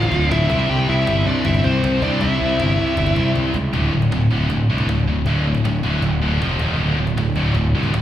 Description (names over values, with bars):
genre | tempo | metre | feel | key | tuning
heavy metal | 158 BPM | 4/4 | straight | D minor | A4 = 440 Hz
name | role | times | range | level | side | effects
high-gain lead guitar | melody | 0.0-3.3 s | C5 to G5 | -24 LUFS | left 1 dB | distortion, slapback echo, tape echo
high-gain lead guitar | second line | 0.0-3.3 s | C4 to G4 | -26 LUFS | right 2 dB | distortion, slapback echo, tape echo
scooped high-gain guitar | riff | 0.0-8.0 s | D2 to C4 | -20 LUFS | left 1 dB | distortion, slapback echo
sludgy distorted guitar | riff | 0.0-3.5 s | D2 to C4 | -28 LUFS | left 1 dB | none
fuzz picked electric bass | bass | 0.0-8.0 s | D1 to C#2 | -20 LUFS | equal | overdrive
cajon | drums | 0.0-8.0 s | none | -28 LUFS | equal | none
room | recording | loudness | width
little or no reverb | live gig heard through the venue's PA, recital hall reverb | -16 LUFS | side -11 dB against mid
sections
0.0-3.7 A section; 3.7-8.0 B section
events
drum fill 3.4-3.7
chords
0.0 Dm; 0.5 C; 3.7 D5; 6.4 F5; 6.6 Eb5; 6.8 D5